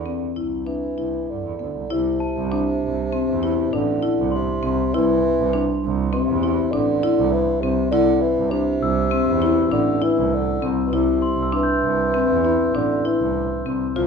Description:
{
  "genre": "contemporary instrumental, chamber music in an uneven meter",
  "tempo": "99 BPM",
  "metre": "5/4",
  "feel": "straight",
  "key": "C major",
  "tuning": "A4 = 442 Hz",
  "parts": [
    { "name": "dark bassoon", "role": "second line", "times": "0.0-14.1 s", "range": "B2 to F3", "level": "-24 LUFS", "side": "right 3 dB", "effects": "none" },
    { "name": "clear double bass", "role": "bass", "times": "0.0-14.1 s", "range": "A1 to G2", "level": "-25 LUFS", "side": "right 6 dB", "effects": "none" },
    { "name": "marimba with medium mallets", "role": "arpeggios", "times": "0.1-14.1 s", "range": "B3 to F4", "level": "-22 LUFS", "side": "left 6 dB", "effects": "none" },
    { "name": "glockenspiel with rubber mallets", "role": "texture", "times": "2.2-12.3 s", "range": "A5 to G6", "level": "-30 LUFS", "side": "left 2 dB", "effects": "none" }
  ],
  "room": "moderate recital hall reverb, RT60 1.6 s",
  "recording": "minimal, uncompressed stereo recording",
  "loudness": "-18 LUFS",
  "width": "side -6 dB against mid",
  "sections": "0.0-1.9 A section; 1.9-14.1 B section",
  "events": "none",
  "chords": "0.0 Cadd9",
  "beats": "0.06 0.67 1.29 | 1.91 2.52 3.13 3.73 4.33 | 4.94 5.54 6.13 6.73 7.33 | 7.93 8.52 9.12 9.72 10.32 | 10.93 11.53 12.13 12.74 13.36 | 13.97"
}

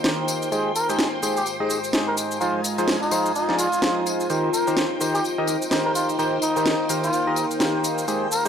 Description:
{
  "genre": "piano house",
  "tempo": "127 BPM",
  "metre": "4/4",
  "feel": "swing 59% on 16ths",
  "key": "Eb major",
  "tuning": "A4 = 444 Hz",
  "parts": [
    { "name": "string machine, violins", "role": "sustained chords", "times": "0.0-8.5 s", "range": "Eb4 to C6", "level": "-29 LUFS", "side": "left 1 dB", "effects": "ensemble chorus" },
    { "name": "percussive organ stab", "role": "riff", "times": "0.0-8.5 s", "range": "Eb3 to Eb5", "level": "-25 LUFS", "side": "equal", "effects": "chorus, tape echo" },
    { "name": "electronic snare drum and cabasa", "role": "drums", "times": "0.0-8.5 s", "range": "none", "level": "-25 LUFS", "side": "equal", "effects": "overdrive" },
    { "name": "tambourine", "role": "percussion", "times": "0.0-8.5 s", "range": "none", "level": "-32 LUFS", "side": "left 6 dB", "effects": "none" },
    { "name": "deep dark ambient pad", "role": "texture", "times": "0.0-8.5 s", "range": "Ab3 to C6", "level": "-29 LUFS", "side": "left 2 dB", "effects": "chorus, built-in reverb" },
    { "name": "trumpet with cup mute", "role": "melody", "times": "0.8-8.5 s", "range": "Eb4 to Bb4", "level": "-27 LUFS", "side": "equal", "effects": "tape echo" }
  ],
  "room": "light reverb, digital ambience",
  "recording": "dry, gritty hardware recording, transformer saturation",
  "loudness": "-20 LUFS",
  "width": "side -8 dB against mid",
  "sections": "0.0-8.5 A section",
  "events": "none",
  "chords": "0.0 Eb6; 0.5 Abmaj7; 2.4 Fm7; 4.3 Eb6",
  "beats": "0.05 | 0.52 0.99 1.46 1.94 | 2.41 2.88 3.35 3.83 | 4.30 4.77 5.24 5.72 | 6.19 6.66 7.13 7.61 | 8.08"
}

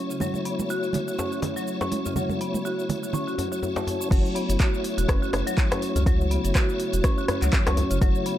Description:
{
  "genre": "afro house",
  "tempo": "123 BPM",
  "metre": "4/4",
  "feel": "swing 56% on 16ths",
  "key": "F# minor",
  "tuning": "A4 = 440 Hz",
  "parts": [
    { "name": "tonewheel organ", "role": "stabs", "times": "0.0-8.4 s", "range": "A3 to C#5", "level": "-30 LUFS", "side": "left 3 dB", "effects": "overdrive, chorus vibrato, fast rotary speaker, vintage 12-bit sampler grit, sidechain pumping, tape echo" },
    { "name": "marimba with medium hard mallets", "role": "arpeggios", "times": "0.1-8.3 s", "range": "C#3 to F#4", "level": "-29 LUFS", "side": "right 1 dB", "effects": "sidechain pumping, tape echo" },
    { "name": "deep house drum kit", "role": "drums", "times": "0.1-8.4 s", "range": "crash cymbal, handclaps, hi-hat, rim click, shaker", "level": "-31 LUFS", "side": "equal", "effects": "none" },
    { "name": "congas", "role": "percussion", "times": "0.2-3.2 s", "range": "none", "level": "-31 LUFS", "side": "right 4 dB", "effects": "none" },
    { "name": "djembe", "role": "percussion", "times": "0.2-8.1 s", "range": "none", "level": "-32 LUFS", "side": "left 1 dB", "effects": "none" },
    { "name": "warm sub bass", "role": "bass", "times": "4.1-8.1 s", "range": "E1 to C#2", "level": "-25 LUFS", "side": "equal", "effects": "tube saturation, sidechain pumping" },
    { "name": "electronic kick drum", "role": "drums", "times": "4.1-8.1 s", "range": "none", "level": "-22 LUFS", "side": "equal", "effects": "none" }
  ],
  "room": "light reverb",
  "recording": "none",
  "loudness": "-22 LUFS",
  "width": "side -12 dB against mid",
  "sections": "0.0-4.1 A section; 4.1-8.4 B section",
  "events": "drop 4.1-8.4",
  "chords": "0.0 F#m7",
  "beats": "| 0.21 0.70 1.19 1.68 | 2.16 2.65 3.14 3.63 | 4.12 4.60 5.09 5.58 | 6.07 6.55 7.04 7.53 | 8.02"
}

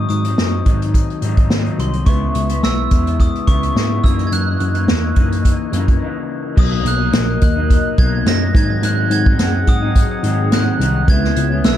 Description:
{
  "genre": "indie pop, bedroom pop",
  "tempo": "106 BPM",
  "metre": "4/4",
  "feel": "swing 55% on 16ths",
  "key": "B major",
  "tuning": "A4 = 439 Hz",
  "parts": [
    { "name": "glockenspiel with hard plastic mallets", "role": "melody", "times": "0.0-11.8 s", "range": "B#5 to A#6", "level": "-24 LUFS", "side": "right 2 dB", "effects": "lush chorus, digital delay" },
    { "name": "electric guitar through a small old amp", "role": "accompaniment", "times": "0.0-11.8 s", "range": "F#2 to E4", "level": "-22 LUFS", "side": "left 4 dB", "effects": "lush chorus, vibrato effect" },
    { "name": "tine electric piano", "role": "bass", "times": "0.0-11.8 s", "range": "A#1 to G#2", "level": "-19 LUFS", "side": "equal", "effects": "overdrive, fast stereo tremolo" },
    { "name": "unplugged drum kit", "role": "drums", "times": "0.1-11.8 s", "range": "crash cymbal, hi-hat, kick drum, snare drum", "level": "-16 LUFS", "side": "equal", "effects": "none" },
    { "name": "hollow soft pad", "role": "sustained chords", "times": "6.9-11.8 s", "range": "B2 to F#5", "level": "-26 LUFS", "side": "right 2 dB", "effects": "chorus" }
  ],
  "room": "small room ambience",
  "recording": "dark, warm production",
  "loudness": "-13 LUFS",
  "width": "side -11 dB against mid",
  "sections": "0.0-6.6 A section; 6.6-11.8 B section",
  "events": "break 6.0-6.6",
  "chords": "0.0 G#7; 2.1 C#m7; 4.0 F#6; 6.6 Bmaj7; 8.6 G#7; 11.1 C#m7",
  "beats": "0.37 0.94 1.50 | 2.06 2.63 3.19 3.76 | 4.32 4.89 5.45 6.01 | 6.58 7.14 7.71 8.27 | 8.83 9.39 9.96 10.52 | 11.08 11.64"
}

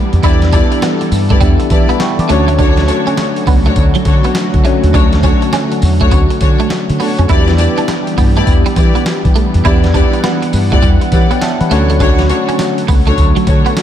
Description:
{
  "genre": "R&B, new jack swing",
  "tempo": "102 BPM",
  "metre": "4/4",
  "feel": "swing 64% on 16ths",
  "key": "E dorian",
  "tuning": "A4 = 440 Hz",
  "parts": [
    { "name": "bell-like tine electric piano", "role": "accompaniment", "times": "0.0-13.8 s", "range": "A3 to D6", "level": "-18 LUFS", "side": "left 1 dB", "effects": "medium stereo tremolo" },
    { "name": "warm analog pad", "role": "sustained chords", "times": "0.0-13.8 s", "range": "D3 to F#5", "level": "-20 LUFS", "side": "equal", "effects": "chorus" },
    { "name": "clean electric guitar", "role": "riff", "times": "0.0-13.7 s", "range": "F#3 to E4", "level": "-20 LUFS", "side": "right 6 dB", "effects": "ensemble chorus" },
    { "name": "deep dub fingered electric bass", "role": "bass", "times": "0.1-13.6 s", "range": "C#2 to E3", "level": "-13 LUFS", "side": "equal", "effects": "none" },
    { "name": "dusty soul sampler-style drum kit", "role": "drums", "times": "0.1-13.8 s", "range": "handclaps, hi-hat, kick drum, snare drum, tambourine", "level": "-14 LUFS", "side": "equal", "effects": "none" },
    { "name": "warm studio string section", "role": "stabs", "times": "0.2-13.7 s", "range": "D4 to D5", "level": "-19 LUFS", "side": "left 3 dB", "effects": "ping-pong delay" }
  ],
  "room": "moderate cathedral reverb, RT60 5.8 s",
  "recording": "dreamy mix soaked in reverb",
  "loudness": "-9 LUFS",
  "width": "side -10 dB against mid",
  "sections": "0.0-13.8 A section",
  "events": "none",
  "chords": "0.0 Em7; 2.3 Dmaj7; 7.3 Em7; 11.7 Dmaj7",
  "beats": "| 0.24 0.82 1.41 2.00 | 2.59 3.18 3.77 4.35 | 4.94 5.53 6.12 6.71 | 7.30 7.88 8.47 9.06 | 9.65 10.24 10.82 11.41 | 12.00 12.59 13.18 13.77"
}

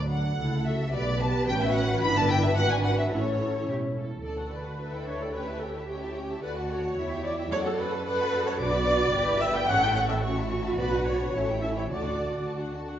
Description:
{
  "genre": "quick classical-period movement for string orchestra",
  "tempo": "110 BPM",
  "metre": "2/4",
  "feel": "straight",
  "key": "D major",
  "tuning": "A4 = 440 Hz",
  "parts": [
    { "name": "warm symphonic violin section", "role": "melody", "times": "0.0-13.0 s", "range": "C#5 to D6", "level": "-34 LUFS", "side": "left 3 dB", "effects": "none" },
    { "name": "warm symphonic viola section", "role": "accompaniment", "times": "0.0-12.5 s", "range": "F#3 to G5", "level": "-29 LUFS", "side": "equal", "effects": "none" },
    { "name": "warm symphonic double bass section", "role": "bass", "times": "0.0-12.8 s", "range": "E1 to F#2", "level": "-30 LUFS", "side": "right 1 dB", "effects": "none" },
    { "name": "warm symphonic violin section", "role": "second line", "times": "0.1-13.0 s", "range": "B3 to B5", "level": "-35 LUFS", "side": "left 1 dB", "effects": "none" },
    { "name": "dark studio cello section", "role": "bass", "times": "0.4-12.7 s", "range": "E4 to B4", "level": "-33 LUFS", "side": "right 1 dB", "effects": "none" }
  ],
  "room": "wet recital hall reverb, RT60 1.6 s",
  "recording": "heard from further back in the room, nothing above 7.6 kHz",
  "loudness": "-25 LUFS",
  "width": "side -10 dB against mid",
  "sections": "0.0-4.2 A section; 4.2-13.0 B section",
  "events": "none",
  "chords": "0.4 A/C#; 0.9 G/B; 1.5 F#m/A; 2.0 Em7/G; 2.6 G#m7b5; 3.1 A; 4.2 D; 4.8 Em7/D; 5.3 A7/D; 6.4 D; 7.0 C#dim/E; 7.5 D/F#; 8.6 Bm; 9.1 Em/G; 9.7 A; 10.8 Bm; 11.3 A7; 11.9 D",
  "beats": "0.38 | 0.93 1.48 | 2.02 2.56 | 3.12 3.69 | 4.25 4.79 | 5.34 5.88 | 6.43 6.97 | 7.52 8.06 | 8.61 9.15 | 9.69 10.24 | 10.79 11.35 | 11.91 12.47"
}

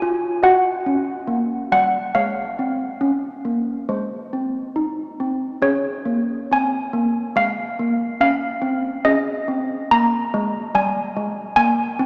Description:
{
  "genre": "classical, tune for handbells",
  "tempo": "70 BPM",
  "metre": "4/4",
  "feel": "straight",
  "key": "Db major",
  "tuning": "A4 = 440 Hz",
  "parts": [
    { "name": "malleted handbells", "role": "solo", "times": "0.0-12.1 s", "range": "G3 to Bb5", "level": "-21 LUFS", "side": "equal", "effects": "none" }
  ],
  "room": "wet church reverb, RT60 3.2 s",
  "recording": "none",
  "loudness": "-21 LUFS",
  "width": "mono",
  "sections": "0.0-12.1 A section",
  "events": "none",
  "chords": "0.4 Ebm; 2.1 Db/Ab; 3.9 Ab; 5.6 Db; 9.0 Ab",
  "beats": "0.43 1.28 | 2.15 3.02 3.89 4.76 | 5.63 6.51 7.36 8.20 | 9.04 9.91 10.76 11.59"
}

